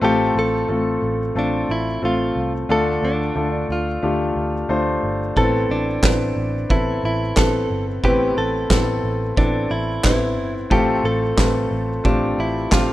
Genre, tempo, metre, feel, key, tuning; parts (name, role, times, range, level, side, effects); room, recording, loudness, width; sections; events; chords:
piano-driven pop; 90 BPM; 4/4; swing 56% on 16ths; A minor; A4 = 442 Hz
direct-recorded clean electric guitar; melody; 0.0-12.9 s; D4 to A4; -24 LUFS; right 1 dB
clear grand piano; accompaniment; 0.0-12.9 s; A2 to C5; -21 LUFS; left 2 dB
vintage muted picked electric bass; bass; 0.0-12.9 s; G1 to D2; -26 LUFS; right 1 dB
loose indie drum kit; drums; 5.4-12.9 s; handclaps, kick drum, snare drum; -19 LUFS; right 1 dB
light reverb, small room ambience; rough home demo mix; -18 LUFS; side -15 dB against mid
0.0-12.9 A section
0.0 F/A; 2.7 Dm; 5.4 Amadd9; 10.7 F/A